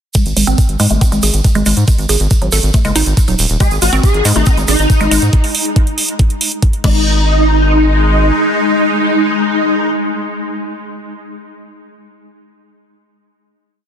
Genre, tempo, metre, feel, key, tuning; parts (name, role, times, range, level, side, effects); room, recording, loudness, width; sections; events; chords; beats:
psychedelic trance; 139 BPM; 4/4; straight; A4 = 441 Hz
woody wave-folded pluck; riff; 0.1-7.2 s; F#3 to A4; -19 LUFS; moving between left 5 dB and right 4 dB; chorus, auto-pan, sidechain pumping, tape echo
big-room dance drum kit; drums; 0.1-6.9 s; crash cymbal, hi-hat; -19 LUFS; right 3 dB
electronic kick drum; drums; 0.1-6.9 s; -12 LUFS; equal
tube shaker; percussion; 0.1-5.3 s; -22 LUFS; right 4 dB
round analog bass; bass; 0.3-8.3 s; D#1 to G#2; -14 LUFS; equal
swarming rave lead; melody; 3.6-9.9 s; D#4 to G#4; -16 LUFS; equal; chorus, phaser, sidechain pumping, tape echo
swarming drone; sustained chords; 4.2-9.9 s; G#3 to D#4; -19 LUFS; left 2 dB; built-in reverb, sidechain pumping
light reverb, digital ambience; dense, heavily limited modern master; -10 LUFS; side -8 dB against mid
0.1-7.1 groove; 7.1-10.5 final hit
0.1 G#5
| 0.15 0.58 1.01 1.45 | 1.88 2.31 2.74 3.17 | 3.60 4.04 4.47 4.90 | 5.33 5.76 6.19 6.62 | 7.06 7.49 7.92 8.35 | 8.78 9.21 9.65